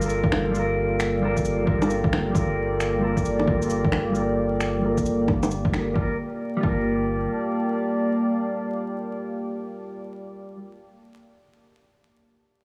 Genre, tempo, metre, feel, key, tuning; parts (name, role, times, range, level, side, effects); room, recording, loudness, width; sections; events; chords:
future garage; 133 BPM; 4/4; swing 64% on 16ths; G minor; A4 = 439 Hz
mellow electric guitar; accompaniment; 0.0-10.7 s; G3 to Bb4; -29 LUFS; equal; vintage 12-bit sampler grit, sidechain pumping, low-pass filter, tape echo
deep dark ambient pad; sustained chords; 0.0-10.2 s; Bb3 to A5; -30 LUFS; equal; chorus, built-in reverb, sidechain pumping
warm sub bass; bass; 0.0-7.3 s; G1; -33 LUFS; equal; sidechain pumping
electronic shaker, finger snaps and bongos; drums; 0.0-5.8 s; -30 LUFS; equal; overdrive, vintage 12-bit sampler grit, small room reverb
electronic kick drum; drums; 0.2-6.8 s; -28 LUFS; equal; overdrive, vintage 12-bit sampler grit, small room reverb
wet digital room reverb, RT60 1.1 s; vinyl crackle, studio ambience; -24 LUFS; mono
0.0-6.0 A section; 6.0-9.6 B section
filter sweep on clean electric guitar 0.0-6.0
0.0 Gm9